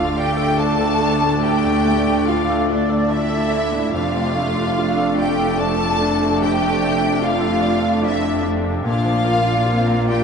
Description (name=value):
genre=cinematic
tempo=73 BPM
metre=3/4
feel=rubato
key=unclear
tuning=A4 = 440 Hz
part: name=rich studio violin section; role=melody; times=0.0-10.2 s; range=D5 to A5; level=-25 LUFS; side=left 2 dB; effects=none
part: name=dark clarinet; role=second line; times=0.0-10.2 s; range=A3 to Bb3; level=-30 LUFS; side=right 5 dB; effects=none
part: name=silver concert flute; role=second line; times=0.0-10.2 s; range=D5 to A5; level=-26 LUFS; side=right 3 dB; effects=none
part: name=warm oboe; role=second line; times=0.0-10.2 s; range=D5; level=-29 LUFS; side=left 6 dB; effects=none
part: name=warm studio violin section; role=second line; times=0.0-10.2 s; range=D4 to A4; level=-26 LUFS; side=equal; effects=none
part: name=bright grand piano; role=accompaniment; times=0.0-10.2 s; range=D2 to D5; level=-25 LUFS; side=right 1 dB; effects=none
part: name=rich studio viola section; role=accompaniment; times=0.0-10.2 s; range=A3 to F4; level=-25 LUFS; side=left 2 dB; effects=none
part: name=warm French horn section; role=sustained chords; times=0.0-10.2 s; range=A3 to D4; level=-24 LUFS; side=right 1 dB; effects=stereo widening
part: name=rich studio cello section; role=bass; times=0.0-10.2 s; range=D2 to Bb2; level=-26 LUFS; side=equal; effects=none
part: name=rich studio double bass section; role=bass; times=0.0-10.2 s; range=F1 to D2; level=-26 LUFS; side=equal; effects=none
room=wet cathedral reverb, RT60 4.9 s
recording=in a vast, echoing space, nothing above 11.0 kHz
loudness=-16 LUFS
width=side -6 dB against mid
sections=0.0-10.2 A section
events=none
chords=0.0 Dmadd9; 3.9 F6; 8.8 Bb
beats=0.59 | 1.43 2.27 3.10 | 3.92 4.76 5.58 | 6.41 7.22 8.03 | 8.85 9.66